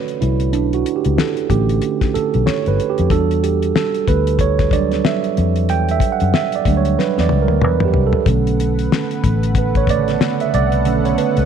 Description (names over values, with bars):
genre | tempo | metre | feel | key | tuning
R&B, neo-soul | 93 BPM | 4/4 | swing 59% on 16ths | B minor | A4 = 440 Hz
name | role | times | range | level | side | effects
mellow tine electric piano | accompaniment | 0.0-11.5 s | C#3 to G5 | -18 LUFS | right 10 dB | none
damped 70s drum kit | drums | 0.1-11.5 s | hi-hat, kick drum, snare drum, toms | -20 LUFS | left 5 dB | none
vintage muted fingered electric bass | bass | 0.2-11.5 s | G1 to F#2 | -18 LUFS | left 2 dB | none
lush unison pad | sustained chords | 8.3-11.5 s | B3 to F#5 | -26 LUFS | left 2 dB | chorus
room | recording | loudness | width
light reverb, small room ambience | 1960s-style stereo | -14 LUFS | side -7 dB against mid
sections
0.0-11.5 A section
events
tine electric piano solo 0.0-11.5; drum fill 7.0-8.3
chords
0.0 Bm9; 3.1 Em9; 8.3 Bm9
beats
| 0.52 1.16 1.81 2.45 | 3.10 3.75 4.39 5.04 | 5.68 6.33 6.97 7.62 | 8.26 8.91 9.55 10.20 | 10.84